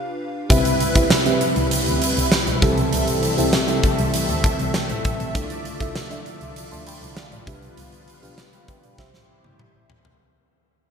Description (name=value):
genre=1980s-style pop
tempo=99 BPM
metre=4/4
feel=straight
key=C major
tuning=A4 = 442 Hz
part: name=FM electric piano with soft pad layer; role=accompaniment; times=0.0-10.2 s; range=C3 to C6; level=-24 LUFS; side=right 1 dB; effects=chorus, shimmer reverb
part: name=warm analog pad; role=sustained chords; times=0.5-10.2 s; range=C3 to E5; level=-30 LUFS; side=left 1 dB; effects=wide subtle chorus, shimmer reverb
part: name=mellow synth brass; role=stabs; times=0.5-10.2 s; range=E3 to D5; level=-28 LUFS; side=equal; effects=chorus, phaser, ping-pong delay, shimmer reverb
part: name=muted double bass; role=bass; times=0.5-10.2 s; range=G1 to C3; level=-27 LUFS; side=equal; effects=none
part: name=huge arena drum kit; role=drums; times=0.5-10.2 s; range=hi-hat, kick drum, snare drum, tambourine, toms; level=-21 LUFS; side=equal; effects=gated reverb
room=moderate lush hall reverb, RT60 1.7 s, studio reverb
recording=bright 1980s-style digital production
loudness=-18 LUFS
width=side -7 dB against mid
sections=0.0-10.2 A section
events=fade-out 0.0-10.2; FM electric piano fill 4.1-5.3; drum fill 9.0-10.2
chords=0.0 G7/C; 0.5 Cmaj7; 2.6 Am7; 5.3 Dmadd9/C; 7.5 G7; 9.0 C